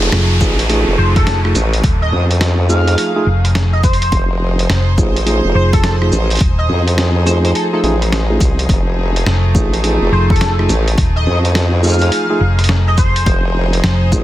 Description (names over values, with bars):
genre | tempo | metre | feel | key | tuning
glitch hop | 105 BPM | 4/4 | swing 64% on 16ths | F minor | A4 = 442 Hz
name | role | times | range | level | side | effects
rich chamber string section | sustained chords | 0.0-14.2 s | F3 to C5 | -22 LUFS | right 1 dB | sidechain pumping
mellow tine electric piano | stabs | 0.0-14.2 s | A3 to G#4 | -19 LUFS | right 1 dB | sidechain pumping, ping-pong delay
formant-sweep wobble bass | bass | 0.0-14.2 s | F1 to F2 | -15 LUFS | equal | chorus
boom bap sampler-style drum kit | drums | 0.0-14.2 s | hi-hat, rim click, shaker, snare drum | -20 LUFS | equal | none
downlifter | sound effects | 0.0-4.1 s | none | -24 LUFS | equal | none
hollow-body short-scale fingered electric bass | bass | 0.1-14.1 s | Eb1 to F1 | -14 LUFS | equal | none
electronic kick drum | drums | 0.4-14.2 s | none | -14 LUFS | equal | overdrive
sync lead | melody | 1.0-13.6 s | A4 to F5 | -22 LUFS | left 1 dB | ensemble chorus, ping-pong delay
room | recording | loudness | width
little or no reverb | none | -11 LUFS | side -14 dB against mid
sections
0.0-14.2 A section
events
none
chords
0.0 F7#9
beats
0.12 0.69 1.26 | 1.83 2.41 2.98 3.55 | 4.12 4.69 5.26 5.83 | 6.41 6.98 7.55 8.12 | 8.69 9.26 9.84 10.41 | 10.98 11.55 12.12 12.69 | 13.26 13.84